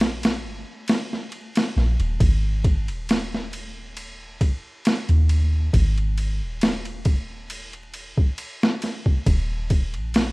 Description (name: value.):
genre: trip hop.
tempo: 68 BPM.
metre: 4/4.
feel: swing 54% on 16ths.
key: unclear.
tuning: A4 = 436 Hz.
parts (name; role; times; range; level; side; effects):
soft 808-style bass; bass; 0.0-10.3 s; D#1 to D#2; -22 LUFS; equal; none.
boom bap sampler-style drum kit; drums; 0.0-10.3 s; kick drum, ride cymbal, snare drum; -22 LUFS; equal; overdrive.
room: little or no reverb.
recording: rough home demo mix, vinyl crackle, lossy compression artefacts.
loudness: -20 LUFS.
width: side -24 dB against mid.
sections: 0.0-10.3 A section.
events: none.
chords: none.